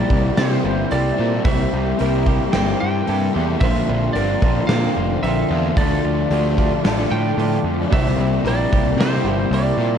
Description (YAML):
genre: rock, shoegaze and dream pop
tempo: 111 BPM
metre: 4/4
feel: straight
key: unclear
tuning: A4 = 440 Hz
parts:
  - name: lightly driven lead guitar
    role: melody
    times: 0.0-10.0 s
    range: C5 to G5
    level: -26 LUFS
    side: right 3 dB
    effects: tape echo
  - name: glassy FM pad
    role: sustained chords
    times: 0.0-10.0 s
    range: F4 to D6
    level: -29 LUFS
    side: left 2 dB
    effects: ensemble chorus, built-in reverb
  - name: picked twelve-string acoustic guitar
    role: arpeggios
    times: 0.0-10.0 s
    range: F4 to C5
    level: -32 LUFS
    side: left 5 dB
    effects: wide subtle chorus, tape echo
  - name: direct-recorded clean electric guitar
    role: riff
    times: 0.0-10.0 s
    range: Bb2 to G4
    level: -25 LUFS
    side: right 12 dB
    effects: reverse reverb
  - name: overdriven semi-hollow guitar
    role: riff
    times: 0.0-10.0 s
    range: Bb2 to E4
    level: -23 LUFS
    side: left 12 dB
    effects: analog chorus
  - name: fuzz picked electric bass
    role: bass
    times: 0.0-10.0 s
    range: F1 to C3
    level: -21 LUFS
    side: equal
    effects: overdrive
  - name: gated 80s drum kit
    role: drums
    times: 0.1-9.7 s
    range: hi-hat, kick drum, snare drum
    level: -20 LUFS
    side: equal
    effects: none
room: light reverb, studio ambience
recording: cassette tape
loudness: -16 LUFS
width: side -8 dB against mid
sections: 0.0-7.9 A section; 7.9-10.0 A section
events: none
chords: 0.0 C7; 3.6 Bbadd9; 5.8 Dm; 7.9 C7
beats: 0.37 0.91 | 1.45 1.99 2.53 3.07 | 3.61 4.15 4.69 5.23 | 5.77 6.31 6.85 7.38 | 7.92 8.46 8.99 9.53